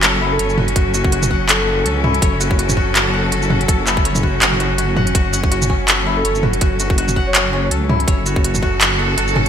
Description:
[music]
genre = half-time drum and bass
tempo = 164 BPM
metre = 4/4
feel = swing 57% on 16ths, half-time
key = F# minor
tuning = A4 = 441 Hz
[part]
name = bright studio cello section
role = sustained chords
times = 0.0-9.5 s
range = F#3 to A4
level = -23 LUFS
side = left 2 dB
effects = sidechain pumping
[part]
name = koto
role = arpeggios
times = 0.0-9.5 s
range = C#4 to F#5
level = -22 LUFS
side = left 1 dB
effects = digital delay
[part]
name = deep soft wobble bass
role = bass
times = 0.0-9.5 s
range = F#1 to C#2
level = -20 LUFS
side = equal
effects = chorus
[part]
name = organic electronic drum kit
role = drums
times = 0.0-9.5 s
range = handclaps, hi-hat, shaker, toms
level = -17 LUFS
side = right 1 dB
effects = studio reverb, gated reverb
[part]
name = breathy flute-like synth lead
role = melody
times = 0.3-1.9, 6.2-7.7 s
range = F#4 to C#5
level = -24 LUFS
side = equal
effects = chorus, vintage 12-bit sampler grit, ping-pong delay
[part]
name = electronic kick drum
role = drums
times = 0.8-8.7 s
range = none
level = -18 LUFS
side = equal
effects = studio reverb
[sound]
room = light reverb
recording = bright 1980s-style digital production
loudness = -14 LUFS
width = side -8 dB against mid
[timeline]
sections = 0.0-9.5 A section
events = none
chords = 0.0 F#m

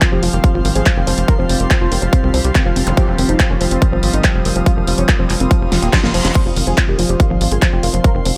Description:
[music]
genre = psychedelic trance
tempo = 142 BPM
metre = 4/4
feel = straight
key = unclear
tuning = A4 = 440 Hz
[part]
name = unison lead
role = melody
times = 0.0-8.3 s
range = F3 to C5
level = -26 LUFS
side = equal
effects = phaser, sidechain pumping, tape echo
[part]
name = overtone-sweeping drone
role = sustained chords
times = 0.0-8.4 s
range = F3 to F4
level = -28 LUFS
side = equal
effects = chorus, built-in reverb, sidechain pumping
[part]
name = woody wave-folded pluck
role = riff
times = 0.0-8.3 s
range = Eb3 to F4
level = -25 LUFS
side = equal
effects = chorus, sidechain pumping, tape echo
[part]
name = big-room dance drum kit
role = drums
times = 0.0-8.3 s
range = crash cymbal, handclaps, hi-hat, snare drum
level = -23 LUFS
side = equal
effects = none
[part]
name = electronic kick drum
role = drums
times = 0.0-8.1 s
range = none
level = -17 LUFS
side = equal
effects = overdrive
[part]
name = airy breathy pad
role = texture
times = 0.0-8.4 s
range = C4 to Eb6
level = -27 LUFS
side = equal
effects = chorus, sidechain pumping
[part]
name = tight sequencer bass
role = bass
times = 0.1-8.3 s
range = Eb1 to C2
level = -20 LUFS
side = equal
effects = tube saturation
[part]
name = zap and reverse cymbal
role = sound effects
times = 2.9-6.4 s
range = none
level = -30 LUFS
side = equal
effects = none
[sound]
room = digital ambience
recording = none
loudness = -15 LUFS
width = mono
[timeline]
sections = 0.0-8.4 A section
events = reverse cymbal 5.7-6.4; drum fill 5.7-6.4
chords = 0.0 F5

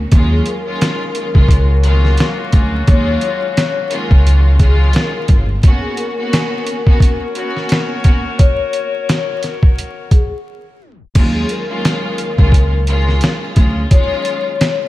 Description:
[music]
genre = hip hop, boom-bap hip-hop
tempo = 87 BPM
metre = 4/4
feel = swing 56% on 16ths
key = Eb minor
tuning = A4 = 440 Hz
[part]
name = upright bass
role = bass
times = 0.0-5.6, 11.2-13.8 s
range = G1 to Eb2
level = -13 LUFS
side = equal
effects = none
[part]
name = rich studio string section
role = accompaniment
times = 0.1-14.7 s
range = Eb2 to Gb4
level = -22 LUFS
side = right 1 dB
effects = cassette tape, high-pass filter, low-pass filter
[part]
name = trip hop sampler-style drum kit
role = drums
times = 0.1-14.8 s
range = crash cymbal, hi-hat, kick drum, snare drum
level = -13 LUFS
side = equal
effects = none
[part]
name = vibraphone with soft mallets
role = melody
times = 0.3-14.9 s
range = Ab4 to Db5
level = -22 LUFS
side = left 6 dB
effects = high-pass filter, low-pass filter, ping-pong delay
[part]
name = warm horn section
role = stabs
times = 1.5-10.4 s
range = Bb3 to Db5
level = -28 LUFS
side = left 4 dB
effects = high-pass filter, low-pass filter, ping-pong delay
[sound]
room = small room ambience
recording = vinyl crackle, tape stop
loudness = -12 LUFS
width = side -16 dB against mid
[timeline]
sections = 0.0-11.2 A section; 11.2-14.9 A section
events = break 5.6-11.2; tape stop 10.8-11.2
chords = 0.1 Ebm11; 5.6 Abm11/Bb (rootless); 11.2 Ebm11

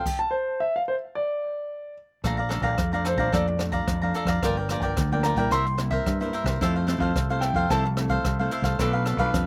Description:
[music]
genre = samba and choro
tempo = 110 BPM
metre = 4/4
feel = straight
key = unclear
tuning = A4 = 440 Hz
[part]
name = warm concert grand piano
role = melody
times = 0.0-7.9 s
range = C5 to C6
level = -29 LUFS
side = equal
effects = slapback echo
[part]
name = cavaquinho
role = accompaniment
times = 0.0-9.5 s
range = D4 to Bb5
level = -30 LUFS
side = equal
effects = none
[part]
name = nylon-string guitar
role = accompaniment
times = 0.0-9.5 s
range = F2 to F4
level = -34 LUFS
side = equal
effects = none
[part]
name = jazz brush drum kit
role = drums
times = 0.1-9.5 s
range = crash cymbal, hi-hat, kick drum, rim click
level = -32 LUFS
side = equal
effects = none
[part]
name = growling fingered electric bass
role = bass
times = 2.2-9.5 s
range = G1 to G2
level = -29 LUFS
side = equal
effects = overdrive
[sound]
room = little or no reverb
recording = recorded outdoors, with no room sound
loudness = -25 LUFS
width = mono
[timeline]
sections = 0.0-2.2 A section; 2.2-9.5 B section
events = stop 0.1-2.2; grand piano solo 2.2-9.5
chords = 0.0 N.C.; 2.2 Bbmaj7; 4.4 Gm7; 5.5 C7; 6.6 Fmaj7; 8.8 Bm7b5

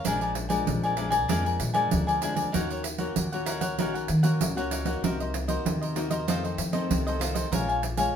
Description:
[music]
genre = samba and choro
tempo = 96 BPM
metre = 4/4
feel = straight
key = Bb minor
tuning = A4 = 441 Hz
[part]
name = cavaquinho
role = accompaniment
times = 0.0-8.2 s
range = D4 to Ab5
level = -29 LUFS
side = left 2 dB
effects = none
[part]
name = pandeiro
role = percussion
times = 0.0-8.1 s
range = none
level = -30 LUFS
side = right 4 dB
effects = none
[part]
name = nylon-string guitar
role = accompaniment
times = 0.1-8.2 s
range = F2 to Gb4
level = -32 LUFS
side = left 4 dB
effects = none
[part]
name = upright bass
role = bass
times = 0.1-8.1 s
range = Bb1 to F3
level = -30 LUFS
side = equal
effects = none
[sound]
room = wet studio reverb, RT60 0.6 s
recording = band playing live in one room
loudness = -24 LUFS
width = side -8 dB against mid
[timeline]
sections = 0.0-8.2 A section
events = none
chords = 0.0 Bb7; 2.5 Ebm7; 5.0 Cm7b5; 6.3 F7; 7.5 Bbm7

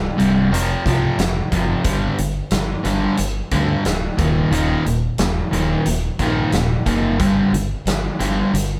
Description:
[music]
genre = hard rock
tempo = 90 BPM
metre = 4/4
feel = straight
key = unclear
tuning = A4 = 440 Hz
[part]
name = crunchy overdriven guitar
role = riff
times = 0.0-8.8 s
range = C2 to G3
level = -21 LUFS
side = equal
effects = none
[part]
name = modern bright fingered electric bass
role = bass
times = 0.0-8.8 s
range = C1 to D2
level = -26 LUFS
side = equal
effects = none
[part]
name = big rock drum kit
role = drums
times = 0.2-8.7 s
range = hi-hat, kick drum, snare drum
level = -25 LUFS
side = equal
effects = none
[sound]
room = moderate studio reverb, RT60 0.8 s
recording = band playing live in one room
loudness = -19 LUFS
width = mono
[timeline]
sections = 0.0-8.8 A section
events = none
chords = 0.0 C5; 0.5 F5; 1.9 G5; 4.2 Eb5; 7.2 G5

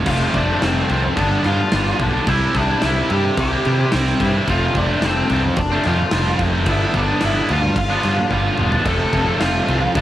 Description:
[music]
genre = quiet-loud alternative rock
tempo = 109 BPM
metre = 4/4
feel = straight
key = unclear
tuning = A4 = 441 Hz
[part]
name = scooped high-gain guitar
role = riff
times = 0.0-10.0 s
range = F2 to E4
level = -22 LUFS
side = right 4 dB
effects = distortion, cassette tape
[part]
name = octave-fuzz lead guitar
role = melody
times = 0.1-10.0 s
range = C4 to A5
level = -22 LUFS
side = equal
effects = distortion, cassette tape
[part]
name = raw garage guitar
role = riff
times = 0.1-10.0 s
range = F2 to E4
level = -24 LUFS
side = left 7 dB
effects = overdrive, cassette tape
[part]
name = fuzz fingered electric bass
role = bass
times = 0.1-10.0 s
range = E1 to C3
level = -21 LUFS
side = equal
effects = overdrive
[part]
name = huge arena drum kit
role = drums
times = 0.1-10.0 s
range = crash cymbal, kick drum, snare drum, toms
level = -24 LUFS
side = equal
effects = cassette tape
[sound]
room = small room ambience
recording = home recording on cassette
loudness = -15 LUFS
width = side -13 dB against mid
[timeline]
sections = 0.1-10.0 A section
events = drum fill 8.3-8.9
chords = 0.1 F; 1.2 G7; 2.3 C; 4.5 F; 6.7 G7; 8.9 F

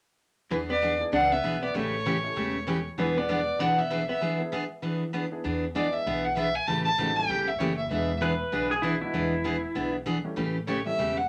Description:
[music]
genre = country, western swing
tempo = 195 BPM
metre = 4/4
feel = swing 60% on 8ths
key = E mixolydian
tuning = A4 = 442 Hz
[part]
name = clear fiddle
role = melody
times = 0.5-8.2, 10.7-11.3 s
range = B4 to A5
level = -30 LUFS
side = equal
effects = none
[part]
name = archtop guitar, miked and amplified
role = second line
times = 0.5-4.4 s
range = E3 to D4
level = -34 LUFS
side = equal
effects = none
[part]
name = picked steel-string acoustic guitar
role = accompaniment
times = 0.5-11.2 s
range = C#3 to G#4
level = -32 LUFS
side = equal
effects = none
[part]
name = upright bass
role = bass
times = 0.5-11.3 s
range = E1 to E2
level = -40 LUFS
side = equal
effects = none
[part]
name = warm upright piano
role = accompaniment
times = 1.0-11.0 s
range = F#3 to G#4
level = -41 LUFS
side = equal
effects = none
[part]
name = pedal steel guitar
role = second line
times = 8.2-9.9 s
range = E4 to B4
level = -31 LUFS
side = equal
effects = none
[sound]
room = wet club ambience, RT60 0.5 s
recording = none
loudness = -28 LUFS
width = mono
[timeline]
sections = 0.5-5.4 A section; 5.4-11.3 B section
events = break 4.2-5.4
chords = 0.5 E7; 1.7 A7; 3.0 E7; 6.7 A7; 7.9 E7; 10.4 A7

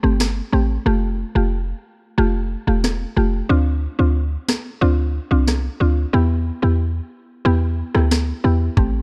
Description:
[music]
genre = dancehall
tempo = 91 BPM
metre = 4/4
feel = straight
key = unclear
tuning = A4 = 440 Hz
[part]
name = mallet-like synth pluck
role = accompaniment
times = 0.0-9.0 s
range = A3 to G4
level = -24 LUFS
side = equal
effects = chorus
[part]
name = short 808-style bass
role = bass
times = 0.0-9.0 s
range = E1 to E2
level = -21 LUFS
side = equal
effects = none
[part]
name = island pop drum kit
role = drums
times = 0.2-8.9 s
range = kick drum, rim click, snare drum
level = -23 LUFS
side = equal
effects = overdrive
[sound]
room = little or no reverb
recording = dark, warm production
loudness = -20 LUFS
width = mono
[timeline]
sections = 0.0-9.0 A section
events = break 0.0-8.8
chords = 0.0 Am7; 0.9 Fadd9; 3.5 Dm7; 6.1 Em

